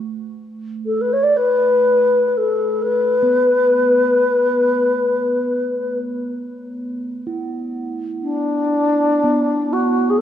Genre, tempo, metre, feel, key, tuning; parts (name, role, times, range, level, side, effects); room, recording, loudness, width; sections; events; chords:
world meditative, free-time meditation music; free time; B minor; A4 = 439 Hz
quartz singing bowl; texture; 0.0-10.2 s; A3 to E4; -25 LUFS; right 2 dB
mellow wooden-headed alto flute; melody; 0.9-10.2 s; D4 to D5; -15 LUFS; left 2 dB; diffuse ambient delay
wet scoring stage reverb, RT60 1.5 s, small room ambience; worn, warbling old tape, cassette tape, warbly pitch drift; -15 LUFS; side -10 dB against mid
0.0-10.2 A section